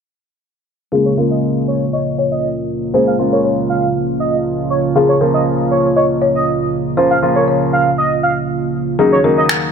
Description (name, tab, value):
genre	dance-pop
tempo	119 BPM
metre	4/4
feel	straight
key	Db major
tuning	A4 = 440 Hz
part	folk marimba with medium mallets	melody	0.9-9.7 s	Ab4 to Eb5	-17 LUFS	left 2 dB	low-pass filter, tape echo
part	clear baby grand piano	accompaniment	0.9-9.7 s	Db3 to Ab4	-18 LUFS	left 2 dB	low-pass filter
part	chorused pulse-width pad	sustained chords	0.9-9.7 s	Db3 to Gb4	-18 LUFS	right 2 dB	low-pass filter
part	octave-doubled lead	melody	1.1-9.5 s	Db5 to F5	-19 LUFS	right 2 dB	chorus, low-pass filter
part	electronic finger snaps	drums	9.5-9.6 s	none	-15 LUFS	left 1 dB	overdrive
room	moderate lush hall reverb, RT60 1.7 s, small room ambience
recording	none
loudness	-13 LUFS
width	side -6 dB against mid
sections	0.9-9.7 A section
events	filter sweep 0.9-9.7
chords	0.9 Db6; 5.0 Bbm/Db; 9.0 Ebm7